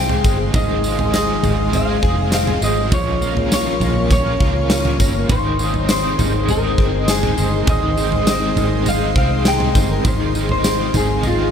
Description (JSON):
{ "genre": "dream pop", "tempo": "101 BPM", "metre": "4/4", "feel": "straight", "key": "Ab major", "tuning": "A4 = 441 Hz", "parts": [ { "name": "electric guitar at the edge of break-up", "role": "melody", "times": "0.0-11.5 s", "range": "F4 to G5", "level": "-22 LUFS", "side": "equal", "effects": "ping-pong delay" }, { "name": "cranked stack guitar", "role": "accompaniment", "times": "0.0-11.5 s", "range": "Ab2 to Bb4", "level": "-26 LUFS", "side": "right 4 dB", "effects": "overdrive, tremolo, analog chorus" }, { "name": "ethereal airy pad", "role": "sustained chords", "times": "0.0-11.5 s", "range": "Ab4 to Db6", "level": "-25 LUFS", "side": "equal", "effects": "ensemble chorus, built-in reverb" }, { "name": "direct-recorded clean electric guitar", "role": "arpeggios", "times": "0.0-11.5 s", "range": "Eb3 to Ab4", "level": "-23 LUFS", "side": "left 5 dB", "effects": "ensemble chorus, ping-pong delay" }, { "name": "vintage muted fingered electric bass", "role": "bass", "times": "0.0-11.5 s", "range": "F1 to Db2", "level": "-22 LUFS", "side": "equal", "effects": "none" }, { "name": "soft synth bell", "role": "texture", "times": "0.0-10.4 s", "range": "Eb5 to Eb6", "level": "-35 LUFS", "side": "right 2 dB", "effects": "none" }, { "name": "huge arena drum kit", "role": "drums", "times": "0.1-11.4 s", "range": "kick drum, snare drum, tambourine, toms", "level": "-19 LUFS", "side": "right 1 dB", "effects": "none" } ], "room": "light reverb", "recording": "none", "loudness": "-15 LUFS", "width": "side -8 dB against mid", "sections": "0.0-11.5 A section", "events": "none", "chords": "0.0 Ab; 0.5 Fm7/Ab; 2.9 Bbm; 5.3 Ab; 10.0 Fm7/Ab", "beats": "| 0.54 1.14 1.73 2.33 | 2.92 3.51 4.11 4.70 | 5.30 5.89 6.48 7.08 | 7.67 8.27 8.86 9.45 | 10.05 10.64 11.24" }